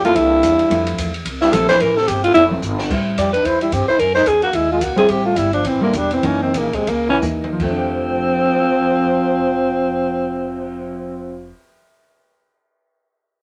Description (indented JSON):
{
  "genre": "jazz, small-group swing and bop",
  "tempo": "153-220 BPM",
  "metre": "4/4",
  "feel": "swing 59% on 8ths",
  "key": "F major",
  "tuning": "A4 = 442 Hz",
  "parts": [
    { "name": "growling alto saxophone", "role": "melody", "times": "0.0-11.5 s", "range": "Ab3 to D5", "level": "-18 LUFS", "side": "equal", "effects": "none" },
    { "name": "clear trombone", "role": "second line", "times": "0.0-11.5 s", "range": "G2 to G4", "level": "-26 LUFS", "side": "equal", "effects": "none" },
    { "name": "upright bass", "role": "bass", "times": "0.0-11.5 s", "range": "E1 to G2", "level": "-30 LUFS", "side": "equal", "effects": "none" },
    { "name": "open jazz drum kit", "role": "drums", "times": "0.0-10.6 s", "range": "crash cymbal, cymbal swell, hi-hat, kick drum, ride cymbal, snare drum, toms", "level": "-32 LUFS", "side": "equal", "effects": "none" },
    { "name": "hollow-body jazz guitar", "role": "accompaniment", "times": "0.1-11.7 s", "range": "E3 to A4", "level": "-25 LUFS", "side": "equal", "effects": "none" }
  ],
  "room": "moderate studio reverb, RT60 0.6 s",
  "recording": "none",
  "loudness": "-17 LUFS",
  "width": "mono",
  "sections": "0.0-2.9 A section; 2.9-7.6 B section; 7.6-10.7 C section",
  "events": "drum fill 2.6, 7.2-7.6; slowing down 5.1-7.6",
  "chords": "0.2 C6; 0.7 Fmaj7; 2.9 Am7; 4.0 Gb5; 5.1 Am7; 6.2 Gb6; 7.6 F69"
}